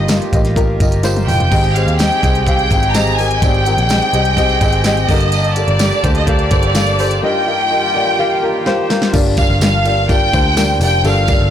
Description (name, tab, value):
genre	piano-driven pop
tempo	126 BPM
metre	4/4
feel	straight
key	G minor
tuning	A4 = 436 Hz
part	clear studio violin section	melody	0.0-11.5 s	D5 to Bb5	-17 LUFS	equal	none
part	warm upright piano	accompaniment	0.0-11.5 s	G2 to F5	-19 LUFS	left 2 dB	none
part	accordion	sustained chords	0.0-9.1 s	G2 to A5	-25 LUFS	right 2 dB	none
part	vintage muted picked electric bass	bass	0.0-11.5 s	F1 to Eb2	-16 LUFS	equal	none
part	pop drum kit	drums	0.1-11.4 s	crash cymbal, hi-hat, kick drum, ride cymbal, snare drum, toms	-17 LUFS	equal	none
part	tambourine	percussion	0.1-11.4 s	none	-31 LUFS	right 8 dB	none
room	light reverb, small room reverb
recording	blown-out, overdriven recording, overdrive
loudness	-12 LUFS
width	side -10 dB against mid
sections	0.0-9.1 A section; 9.1-11.5 B section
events	drum fill 1.0-1.5, 8.7-9.1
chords	0.0 Ebadd9/G; 1.5 Abmaj7; 5.1 Gmadd9; 7.2 Ebadd9/G; 9.1 Gm7